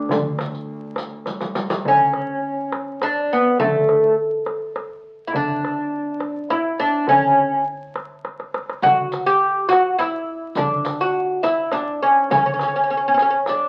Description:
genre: Arabic maqam ensemble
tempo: 103 BPM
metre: 3/4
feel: straight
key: D maqam ajam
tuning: A4 = 439 Hz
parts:
  - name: oud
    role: melody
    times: 0.0-13.7 s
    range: A3 to G4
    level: -20 LUFS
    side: equal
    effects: none
  - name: dark cello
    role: bass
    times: 0.0-13.7 s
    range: D3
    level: -31 LUFS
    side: equal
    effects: none
  - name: warm double bass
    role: drone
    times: 0.0-1.9 s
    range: D2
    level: -38 LUFS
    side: equal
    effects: none
  - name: darbuka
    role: percussion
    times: 0.1-13.6 s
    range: none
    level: -32 LUFS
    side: equal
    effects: none
  - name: riq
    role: percussion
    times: 0.1-1.8, 8.8-13.6 s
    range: none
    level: -32 LUFS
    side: equal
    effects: none
room: moderate club reverb, RT60 0.6 s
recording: very old 78 rpm record, vinyl crackle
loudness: -20 LUFS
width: mono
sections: 0.0-1.9 A section; 1.9-13.7 B section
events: drum fill 1.3-1.9, 8.2-8.8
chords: none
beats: | 0.11 0.69 1.27 | 1.85 2.43 3.01 | 3.59 4.17 4.75 | 5.33 5.92 6.50 | 7.08 7.66 8.24 | 8.82 9.40 9.98 | 10.57 11.15 11.73 | 12.31 12.89 13.47

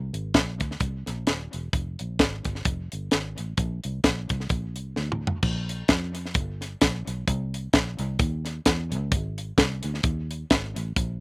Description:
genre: uptempo gospel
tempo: 130 BPM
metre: 4/4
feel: swing 56% on 8ths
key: unclear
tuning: A4 = 444 Hz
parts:
  - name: fingered electric bass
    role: bass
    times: 0.0-11.2 s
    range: Eb1 to F2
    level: -30 LUFS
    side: equal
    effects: none
  - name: tight funk drum kit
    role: drums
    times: 0.1-11.1 s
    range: crash cymbal, hi-hat, kick drum, snare drum, toms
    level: -23 LUFS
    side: equal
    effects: none
room: little or no reverb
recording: recorded outdoors, with no room sound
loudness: -24 LUFS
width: side -28 dB against mid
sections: 0.0-5.4 A section; 5.4-11.2 B section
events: drum fill 5.0-5.4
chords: none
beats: 0.34 0.81 1.27 | 1.73 2.19 2.65 3.12 | 3.58 4.04 4.50 4.96 | 5.43 5.89 6.35 6.81 | 7.27 7.73 8.20 8.66 | 9.12 9.58 10.04 10.50 | 10.96

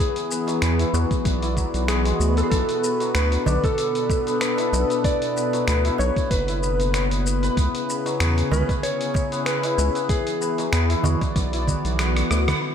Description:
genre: organic downtempo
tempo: 95 BPM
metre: 4/4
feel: swing 55% on 16ths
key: unclear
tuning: A4 = 441 Hz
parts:
  - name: clean lap steel guitar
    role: melody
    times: 0.0-12.0 s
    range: G#4 to D5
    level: -27 LUFS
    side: equal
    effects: ping-pong delay
  - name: warm analog pad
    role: sustained chords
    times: 0.0-12.7 s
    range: B2 to D5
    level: -26 LUFS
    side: left 1 dB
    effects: chorus, tremolo, sidechain pumping
  - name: santur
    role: arpeggios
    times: 0.0-12.7 s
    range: F#3 to B4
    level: -29 LUFS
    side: left 3 dB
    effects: low-pass filter, ping-pong delay
  - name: dusty soul sampler-style drum kit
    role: drums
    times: 0.0-12.6 s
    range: finger snaps, hi-hat, rim click, shaker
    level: -29 LUFS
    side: equal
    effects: none
  - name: darbuka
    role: percussion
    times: 0.5-12.6 s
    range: none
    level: -30 LUFS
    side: right 4 dB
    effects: none
  - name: round analog bass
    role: bass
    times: 0.6-12.5 s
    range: F#1 to E2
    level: -22 LUFS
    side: equal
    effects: sidechain pumping
  - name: electronic kick drum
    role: drums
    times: 1.1-11.8 s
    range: none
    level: -24 LUFS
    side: equal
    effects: none
room: wet plate reverb, RT60 1.8 s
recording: dreamy mix soaked in reverb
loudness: -19 LUFS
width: side -8 dB against mid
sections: 0.0-12.6 A section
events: drum fill 12.0-12.6; band accent 12.5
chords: 0.0 E7; 2.5 Bm7; 7.6 C#m7; 10.1 E7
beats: 0.62 1.25 1.89 | 2.52 3.15 3.78 4.41 | 5.04 5.67 6.31 6.94 | 7.57 8.20 8.83 9.46 | 10.10 10.73 11.36 11.99 | 12.62

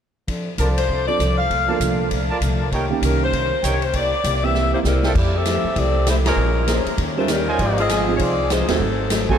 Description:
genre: jazz, big band swing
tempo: 197 BPM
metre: 4/4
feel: swing 62% on 8ths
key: unclear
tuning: A4 = 440 Hz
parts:
  - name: picked plugged-in steel-string acoustic guitar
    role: accompaniment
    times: 0.3-9.3 s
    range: Ab2 to C5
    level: -27 LUFS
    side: left 3 dB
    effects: none
  - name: swinging big-band drum kit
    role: drums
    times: 0.3-9.3 s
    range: crash cymbal, hi-hat, kick drum, ride cymbal, snare drum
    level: -25 LUFS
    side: equal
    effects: none
  - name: bright saxophone section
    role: melody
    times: 0.6-9.3 s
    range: Gb3 to F5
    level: -22 LUFS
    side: left 2 dB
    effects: none
  - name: mellow trumpet section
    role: stabs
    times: 0.6-9.4 s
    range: Eb4 to Bb5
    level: -28 LUFS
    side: right 2 dB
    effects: ping-pong delay
  - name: upright bass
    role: bass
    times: 0.6-9.4 s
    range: Ab1 to F2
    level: -22 LUFS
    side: equal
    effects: none
  - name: warm concert grand piano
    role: accompaniment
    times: 1.1-4.8, 7.2-9.4 s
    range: Eb3 to Bb4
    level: -27 LUFS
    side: right 8 dB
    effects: none
room: moderate huge ambient reverb, RT60 6.4 s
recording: dreamy mix soaked in reverb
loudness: -17 LUFS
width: side -8 dB against mid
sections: 0.3-5.2 A section; 5.2-9.4 B section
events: drum fill 4.5-5.2; band accent 6.2, 8.6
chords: 0.3 F6; 1.5 Bbmaj7; 2.7 Eb7; 3.9 C7; 5.2 Fmaj9; 6.4 Bbm9; 7.0 Eb7; 7.6 Ab6; 8.8 Ab7b9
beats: | 0.28 0.59 0.89 1.20 | 1.50 1.81 2.11 2.42 | 2.72 3.02 3.33 3.63 | 3.94 4.24 4.55 4.85 | 5.15 5.46 5.76 6.07 | 6.37 6.67 6.98 7.28 | 7.59 7.89 8.19 8.50 | 8.80 9.10

